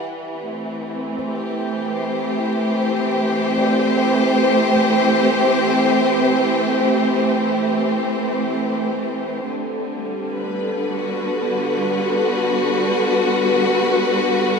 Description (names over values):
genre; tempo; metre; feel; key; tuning
ambient; 51 BPM; 4/4; straight; A dorian; A4 = 439 Hz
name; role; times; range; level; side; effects
warm symphonic string section; sustained chords; 0.0-14.6 s; D3 to C5; -17 LUFS; equal; none
handpan; arpeggios; 0.0-14.6 s; G4 to E5; -37 LUFS; left 1 dB; none
room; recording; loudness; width
wet huge ambient reverb, RT60 7.4 s; dreamy mix soaked in reverb; -17 LUFS; side -5 dB against mid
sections
0.0-14.6 A section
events
none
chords
0.0 Am7; 9.5 Gmaj7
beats
1.19 2.39 3.58 | 4.77 5.95 7.12 8.31 | 9.48 10.65 11.83 13.02 | 14.21